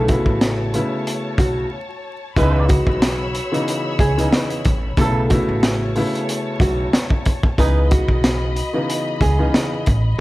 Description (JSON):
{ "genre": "hip hop, boom-bap hip-hop", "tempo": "92 BPM", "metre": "4/4", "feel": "swing 55% on 16ths", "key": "C# minor", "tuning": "A4 = 440 Hz", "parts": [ { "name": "nylon-string guitar", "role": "melody", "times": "0.0-9.5 s", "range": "F#4 to B4", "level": "-25 LUFS", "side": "right 1 dB", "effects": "high-pass filter, low-pass filter, ping-pong delay" }, { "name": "dark upright piano", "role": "accompaniment", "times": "0.0-9.8 s", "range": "C#3 to E4", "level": "-23 LUFS", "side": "left 1 dB", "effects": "cassette tape, high-pass filter, low-pass filter" }, { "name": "clear studio string section", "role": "sustained chords", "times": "0.0-10.2 s", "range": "C#5 to E6", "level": "-30 LUFS", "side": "left 2 dB", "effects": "high-pass filter, low-pass filter" }, { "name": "upright bass", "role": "bass", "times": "0.0-10.1 s", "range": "A1 to C#2", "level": "-20 LUFS", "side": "equal", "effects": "none" }, { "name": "crunchy breakbeat drum kit", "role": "drums", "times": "0.1-10.0 s", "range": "hi-hat, kick drum, snare drum", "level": "-19 LUFS", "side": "equal", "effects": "none" }, { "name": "muted trumpet section", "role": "stabs", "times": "2.4-7.8 s", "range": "F#3 to B4", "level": "-29 LUFS", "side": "right 4 dB", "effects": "high-pass filter, low-pass filter, ping-pong delay" } ], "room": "small room reverb", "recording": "vinyl crackle", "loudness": "-16 LUFS", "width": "side -18 dB against mid", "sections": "0.0-2.4 A section; 2.4-10.2 B section", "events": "break 1.7-2.4", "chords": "0.0 B9sus4; 2.4 C#m9; 5.0 B9sus4; 7.6 C#m9" }